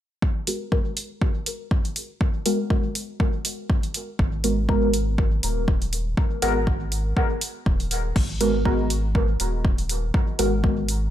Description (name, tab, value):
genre	dub techno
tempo	121 BPM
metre	4/4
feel	swing 56% on 16ths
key	G# minor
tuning	A4 = 441 Hz
part	electronic kick drum	drums	0.2-10.7 s	none	-22 LUFS	equal	overdrive, small room reverb
part	deep mellow chord stab	stabs	0.5-10.8 s	G#3 to A#4	-26 LUFS	equal	chorus, phaser, sidechain pumping, dub echo
part	deep house drum kit	drums	0.5-11.0 s	crash cymbal, hi-hat	-28 LUFS	right 1 dB	overdrive, small room reverb
part	soft dub sub bass	bass	4.2-11.1 s	D#1 to G#1	-25 LUFS	equal	sidechain pumping
room	light reverb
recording	none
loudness	-21 LUFS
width	side -12 dB against mid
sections	0.2-8.2 A section; 8.2-11.1 B section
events	none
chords	0.2 G#m9